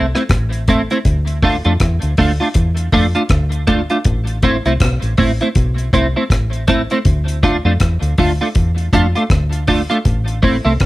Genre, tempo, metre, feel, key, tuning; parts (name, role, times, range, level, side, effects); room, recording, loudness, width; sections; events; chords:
roots reggae; 80 BPM; 4/4; swing 59% on 16ths; A4 = 442 Hz
clean electric guitar; accompaniment; 0.0-10.7 s; A3 to F4; -17 LUFS; right 1 dB; analog chorus, cassette tape, tape echo
fingered electric bass; bass; 0.0-10.9 s; A1 to F2; -17 LUFS; equal
deep reggae drum kit; drums; 0.2-10.9 s; hi-hat, kick drum, rim click; -17 LUFS; equal; cassette tape
moderate studio reverb, RT60 0.6 s; home recording on cassette; -13 LUFS; side -17 dB against mid
0.0-10.9 A section
0.0 Am; 1.0 Dm; 4.1 Am; 7.1 Dm; 10.1 Am